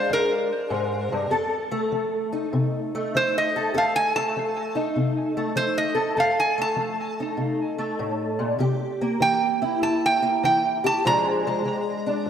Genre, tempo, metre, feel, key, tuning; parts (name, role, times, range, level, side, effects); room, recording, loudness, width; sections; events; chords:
acoustic country blues, solo or duo; 99 BPM; 4/4; swing 66% on 8ths; F mixolydian; A4 = 440 Hz
metal-body resonator slide guitar; melody; 0.0-12.3 s; Bb4 to Bb5; -23 LUFS; right 2 dB; analog delay
fingerpicked acoustic archtop guitar; accompaniment; 0.0-12.3 s; F2 to A4; -24 LUFS; left 1 dB; ensemble chorus
wet lush hall reverb, RT60 1.7 s, small room ambience; dreamy mix soaked in reverb; -21 LUFS; side -8 dB against mid
0.0-12.3 A section
0.0 Bb7; 1.3 F7; 8.6 C7; 11.0 Bb7